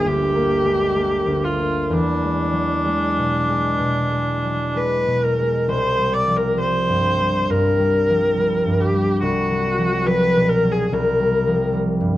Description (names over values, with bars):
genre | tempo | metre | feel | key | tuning
classical, impressionist duo for viola and harp | 62-75 BPM | 4/4 | rubato | unclear | A4 = 439 Hz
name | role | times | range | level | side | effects
rich viola | melody | 0.0-11.7 s | D4 to D5 | -19 LUFS | left 1 dB | none
concert harp | accompaniment | 0.0-12.2 s | G1 to Bb3 | -20 LUFS | equal | none
room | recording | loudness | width
moderate large studio reverb, RT60 1.4 s | dark, warm production | -17 LUFS | side -14 dB against mid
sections
0.0-12.2 A section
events
none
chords
0.0 Gm; 1.9 E9; 5.7 C7sus4; 9.2 B5/C; 10.9 Gm7/C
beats
0.06 0.96 | 1.92 2.87 3.81 4.75 | 5.67 6.57 7.50 8.38 | 9.21 10.06 10.91 11.73